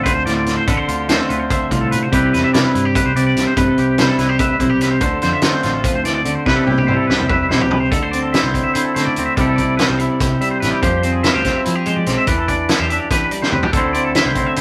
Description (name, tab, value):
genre	math rock and midwest emo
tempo	290 BPM (eighths)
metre	7/8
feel	straight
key	unclear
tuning	A4 = 440 Hz
part	twangy electric guitar	accompaniment	0.0-14.6 s	A2 to C5	-20 LUFS	equal	none
part	twangy electric guitar	arpeggios	0.0-14.6 s	G4 to E5	-24 LUFS	equal	harmonic tremolo
part	vintage muted picked electric bass	bass	0.0-14.6 s	A1 to F3	-26 LUFS	equal	none
part	loose indie drum kit	drums	0.1-14.6 s	hi-hat, kick drum, snare drum, toms	-22 LUFS	equal	none
room	moderate studio reverb, RT60 0.5 s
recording	rough rehearsal-room recording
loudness	-16 LUFS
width	mono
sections	0.0-7.9 A section; 7.9-14.6 B section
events	drum fill 6.5-7.9, 13.4-13.7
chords	0.0 Dm7; 2.1 Cmaj9; 5.0 Dm7; 6.5 Cmaj7; 7.9 D9sus4; 9.4 C69; 10.8 Fmadd9; 12.3 Em7; 13.7 Dsus2